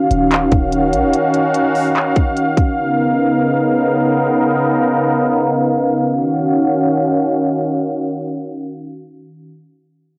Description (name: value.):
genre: hip hop, atmospheric cloud-rap.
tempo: 146 BPM.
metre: 4/4.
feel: half-time.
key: Eb minor.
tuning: A4 = 445 Hz.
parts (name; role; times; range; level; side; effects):
sweeping resonant pad; sustained chords; 0.0-9.5 s; Db3 to F5; -17 LUFS; equal; chorus, sidechain pumping, low-pass filter, cassette tape.
clean 808-style bass; bass; 0.1-1.1 s; Eb1 to Bb1; -24 LUFS; equal; none.
trap drum kit; drums; 0.1-2.7 s; handclaps, hi-hat, kick drum; -19 LUFS; equal; cassette tape.
room: moderate booth ambience, RT60 0.2 s.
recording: home recording on cassette.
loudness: -16 LUFS.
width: mono.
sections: 0.0-6.1 A section; 6.1-9.4 B section.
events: filter sweep on analog synth pad 0.0-6.1.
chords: 0.0 Ebm9; 2.8 Db13; 6.1 Ebm9.